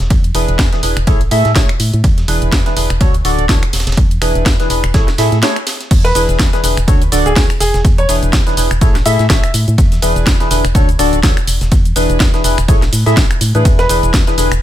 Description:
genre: piano house.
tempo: 124 BPM.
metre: 4/4.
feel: swing 57% on 16ths.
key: E mixolydian.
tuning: A4 = 439 Hz.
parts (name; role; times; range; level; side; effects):
organ-like FM bass; bass; 0.0-14.6 s; D1 to A2; -16 LUFS; equal; sidechain pumping.
breakbeat sampler-style drum kit; drums; 0.0-14.5 s; hi-hat, ride cymbal, snare drum; -28 LUFS; right 2 dB; high-pass filter on cymbals, small room ambience, high-pass filter on snare, high-pass filter on hats.
garage drum kit; drums; 0.0-14.6 s; cabasa, crash cymbal, finger snaps, hi-hat, snare drum; -18 LUFS; equal; small room ambience.
electronic kick drum; drums; 0.1-14.2 s; none; -12 LUFS; equal; small room ambience.
percussive organ stab; riff; 0.3-14.5 s; D3 to E5; -17 LUFS; equal; wide subtle chorus, sidechain pumping.
clear baby grand piano; melody; 6.0-9.5, 13.8-13.9 s; G#4 to E5; -19 LUFS; equal; ping-pong delay.
room: little or no reverb.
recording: none.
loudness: -10 LUFS.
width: side -12 dB against mid.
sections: 0.0-5.9 A section; 5.9-14.6 B section.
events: break 5.4-5.9; drop 5.9-14.6.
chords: 0.0 E7; 1.1 Amaj7; 2.0 E7; 3.0 Dmaj7; 3.7 E7; 4.9 Amaj7; 5.9 E7; 6.9 Dmaj7; 7.6 E7; 8.8 Amaj7; 9.8 E7; 10.7 Dmaj7; 11.5 E7; 12.7 Amaj7; 13.7 E7.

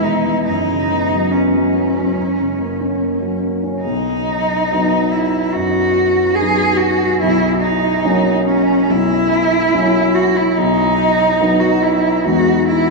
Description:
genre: classical, romantic duo for cello and grand piano.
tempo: 71 BPM.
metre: 4/4.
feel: rubato.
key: B major.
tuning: A4 = 440 Hz.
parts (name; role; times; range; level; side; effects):
rich cello; melody; 0.0-12.9 s; C#4 to G#4; -15 LUFS; equal; none.
warm concert grand piano; accompaniment; 0.0-12.9 s; B1 to D#4; -17 LUFS; equal; none.
room: wet cathedral reverb, RT60 6.1 s.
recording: in a vast, echoing space.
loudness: -13 LUFS.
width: side -1 dB against mid.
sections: 0.0-3.8 A section; 3.8-12.9 B section.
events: none.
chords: 0.5 F#sus4; 2.2 F#; 3.8 B; 7.2 F#7/B; 10.6 B; 12.2 Emaj7.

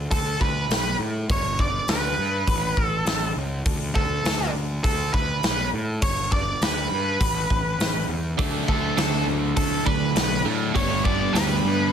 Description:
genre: quiet-loud alternative rock.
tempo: 101 BPM.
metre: 4/4.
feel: straight.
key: unclear.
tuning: A4 = 436 Hz.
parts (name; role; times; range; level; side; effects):
fuzz picked electric bass; bass; 0.0-11.9 s; G1 to A2; -27 LUFS; equal; overdrive.
octave-fuzz lead guitar; melody; 0.1-11.9 s; A4 to D5; -26 LUFS; right 1 dB; distortion, slapback echo.
big rock drum kit; drums; 0.1-11.5 s; hi-hat, kick drum, snare drum; -25 LUFS; equal; none.
twelve-string electric guitar; arpeggios; 8.4-11.9 s; D3 to D4; -32 LUFS; right 9 dB; tremolo, slapback echo.
cranked stack guitar; riff; 8.4-11.9 s; G2 to D4; -27 LUFS; right 14 dB; overdrive.
overdriven electric guitar; riff; 8.4-11.9 s; G2 to D4; -28 LUFS; left 15 dB; none.
room: light reverb.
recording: none.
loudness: -21 LUFS.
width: side -8 dB against mid.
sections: 0.0-11.9 A section.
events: none.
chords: 0.0 D5; 1.3 G; 2.5 A; 3.7 D5; 6.0 G; 7.2 A5; 8.4 D; 10.8 Gadd9.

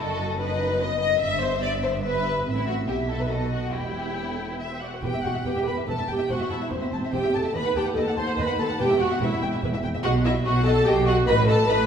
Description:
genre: quick classical-period movement for string orchestra.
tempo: 145 BPM.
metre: 3/4.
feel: straight.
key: E minor.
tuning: A4 = 440 Hz.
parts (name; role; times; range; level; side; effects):
dark symphonic violin section; melody; 0.0-11.8 s; B4 to A5; -32 LUFS; left 3 dB; none.
warm symphonic violin section; second line; 0.0-11.9 s; E4 to C6; -28 LUFS; left 3 dB; none.
dark symphonic viola section; accompaniment; 0.0-11.9 s; B3 to D5; -26 LUFS; right 1 dB; none.
clear symphonic double bass section; bass; 0.0-11.9 s; E1 to D#2; -30 LUFS; right 2 dB; none.
warm studio cello section; bass; 0.0-11.9 s; D#2 to B2; -29 LUFS; right 1 dB; none.
room: wet recital hall reverb, RT60 1.4 s.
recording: recorded in a church or concert hall.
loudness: -22 LUFS.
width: side -8 dB against mid.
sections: 0.0-5.0 A section; 5.0-11.9 B section.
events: none.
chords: 0.0 B7/F#; 1.2 Em/G; 2.5 F#m7b5/A (rootless); 2.9 E5/B; 3.3 B7; 3.7 Em; 6.3 Am/E; 7.6 B7b9b13/D#; 8.8 Em; 10.0 B; 11.3 B7/A.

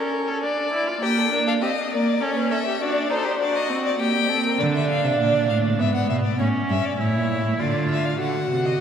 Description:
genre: classical, baroque-style fugue for string quartet.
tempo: 100 BPM.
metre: 3/4.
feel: straight.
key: unclear.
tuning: A4 = 440 Hz.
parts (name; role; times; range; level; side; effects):
dark violin; second line; 0.0-4.6 s; F#4 to D5; -28 LUFS; left 2 dB; none.
rich viola; accompaniment; 0.0-8.8 s; Bb3 to F#4; -24 LUFS; right 2 dB; none.
rich violin; melody; 1.0-8.8 s; C5 to G5; -25 LUFS; left 6 dB; none.
rich cello; bass; 4.6-8.8 s; G2 to D3; -23 LUFS; right 2 dB; none.
room: wet church reverb, RT60 3.1 s.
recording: none.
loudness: -20 LUFS.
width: side -8 dB against mid.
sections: 0.0-8.2 A section.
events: none.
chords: 0.4 Dm; 1.0 Gm/Bb; 2.2 A7/C#; 2.8 D7; 4.0 Gm/Bb; 4.6 Dm; 5.8 E7/G#; 6.4 A; 7.6 Dm; 8.2 D7.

